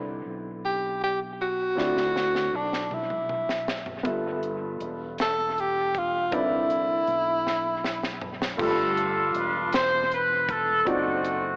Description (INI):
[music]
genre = slow gospel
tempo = 53 BPM (dotted quarters)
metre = 6/8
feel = straight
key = unclear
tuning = A4 = 440 Hz
[part]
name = warm upright piano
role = accompaniment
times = 0.0-11.6 s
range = G2 to B5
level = -31 LUFS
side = equal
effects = dub echo
[part]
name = fingered electric bass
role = bass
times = 0.0-11.6 s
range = E1 to D2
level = -38 LUFS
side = equal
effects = none
[part]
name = breathy tenor saxophone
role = melody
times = 0.7-8.2 s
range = D4 to A4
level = -25 LUFS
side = equal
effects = dub echo
[part]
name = crisp fusion drum kit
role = drums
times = 1.8-11.4 s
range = crash cymbal, hi-hat, kick drum, snare drum, toms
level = -33 LUFS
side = equal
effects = dub echo
[part]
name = warm horn section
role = melody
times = 8.6-11.6 s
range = A3 to C5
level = -23 LUFS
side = equal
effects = dub echo
[sound]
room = moderate echo chamber reverb, RT60 2.1 s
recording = echo-heavy mix, cassette tape, AM radio sound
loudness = -23 LUFS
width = side -37 dB against mid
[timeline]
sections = 0.0-8.6 A section; 8.6-11.6 B section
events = drum fill 1.8-4.0, 7.5-8.6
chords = 0.0 Cmaj9; 1.8 D9; 4.0 G13; 6.3 Cmaj9; 8.6 G9; 10.9 D7b9/F#